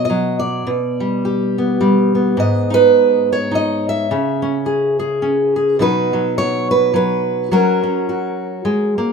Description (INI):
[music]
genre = folk, solo fingerstyle acoustic guitar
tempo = 105 BPM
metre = 3/4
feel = swing 58% on 8ths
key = B major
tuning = A4 = 440 Hz
[part]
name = fingerpicked steel-string acoustic guitar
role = solo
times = 0.0-9.1 s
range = G#2 to E5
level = -14 LUFS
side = right 1 dB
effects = none
[sound]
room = moderate studio reverb, RT60 0.5 s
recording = minimal, uncompressed stereo recording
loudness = -14 LUFS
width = side -5 dB against mid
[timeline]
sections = 0.0-9.1 A section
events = none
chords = 0.0 B5; 0.7 G/B; 2.4 G#m; 4.1 C#m; 5.8 B; 7.5 F#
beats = 0.10 | 0.67 1.25 1.82 | 2.39 2.96 3.53 | 4.11 4.67 5.25 | 5.82 6.38 6.95 | 7.52 8.09 8.66